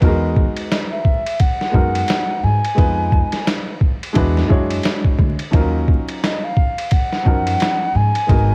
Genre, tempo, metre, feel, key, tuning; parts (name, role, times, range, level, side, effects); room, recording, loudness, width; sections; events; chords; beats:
hip hop, jazz-hop; 87 BPM; 4/4; swing 57% on 16ths; A4 = 440 Hz
warm upright piano; accompaniment; 0.0-8.5 s; E#3 to C#5; -25 LUFS; equal; cassette tape
upright bass; bass; 0.0-8.5 s; G#1 to G#2; -21 LUFS; equal
boom bap sampler-style drum kit; drums; 0.0-8.5 s; hi-hat, kick drum, ride cymbal, snare drum; -20 LUFS; equal; vintage 12-bit sampler grit, cassette tape
alto ocarina; melody; 0.7-8.5 s; D#5 to G#5; -23 LUFS; equal; cassette tape
little or no reverb; home recording on cassette, vinyl crackle; -18 LUFS; mono
0.0-8.5 A section
0.0 Emaj9#11; 2.8 Fm7b5; 4.2 E9; 5.5 D#m9
| 0.01 0.70 1.40 2.08 | 2.77 3.46 4.15 4.84 | 5.53 6.22 6.91 7.60 | 8.29